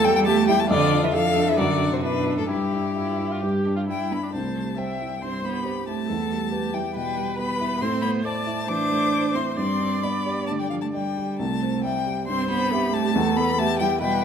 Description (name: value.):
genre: quick classical-period movement for piano quartet.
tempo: 128-142 BPM.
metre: 4/4.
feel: rubato.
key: C major.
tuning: A4 = 441 Hz.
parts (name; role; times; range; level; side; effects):
clear violin; melody; 0.0-14.2 s; G4 to D6; -26 LUFS; left 7 dB; none.
rich cello; second line; 0.0-14.2 s; G2 to D4; -27 LUFS; right 7 dB; none.
dark baby grand piano; accompaniment; 0.0-14.2 s; C2 to E5; -26 LUFS; left 1 dB; none.
rich viola; accompaniment; 0.0-14.2 s; D4 to E5; -29 LUFS; right 3 dB; none.
room: moderate recital hall reverb, RT60 1.5 s.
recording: none.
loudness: -21 LUFS.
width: side -7 dB against mid.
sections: 0.0-4.3 A section; 4.3-14.2 B section.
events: none.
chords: 0.0 C/E (rootless); 0.7 Dm/F; 1.6 D/F#; 2.5 Em/G; 3.4 G5; 4.3 C; 6.1 Em; 7.8 Am; 9.6 G; 11.4 C; 13.2 Em.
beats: 0.26 | 0.70 1.14 1.59 2.04 | 2.50 2.97 3.43 3.89 | 4.35 4.79 5.22 5.66 | 6.09 6.53 6.96 7.38 | 7.82 8.25 8.69 9.13 | 9.57 10.03 10.48 10.94 | 11.39 11.84 12.29 12.72 | 13.16 13.59 14.02.